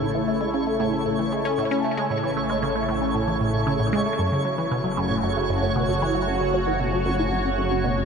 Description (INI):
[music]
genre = ambient, sequencer-driven space music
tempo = 115 BPM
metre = 4/4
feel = straight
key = F# minor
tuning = A4 = 440 Hz
[part]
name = phased analog pad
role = sustained chords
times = 0.0-8.1 s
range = C#3 to C#5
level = -25 LUFS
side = equal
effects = phaser, chorus
[part]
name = resonant blip pluck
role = riff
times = 0.0-8.0 s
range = F#2 to C#4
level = -25 LUFS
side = equal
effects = phaser, ping-pong delay
[part]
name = round analog bass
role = bass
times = 0.0-8.1 s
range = F#1 to A1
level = -34 LUFS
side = equal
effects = tube saturation
[part]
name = twinkling granular texture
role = texture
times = 0.0-8.1 s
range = C#5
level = -29 LUFS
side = right 4 dB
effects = built-in reverb
[sound]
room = wet huge ambient reverb, RT60 9.2 s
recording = none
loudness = -21 LUFS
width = side -6 dB against mid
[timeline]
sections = 0.0-8.1 A section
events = fade-in on analog synth bass 0.0-8.1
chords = 0.0 A; 4.2 F#m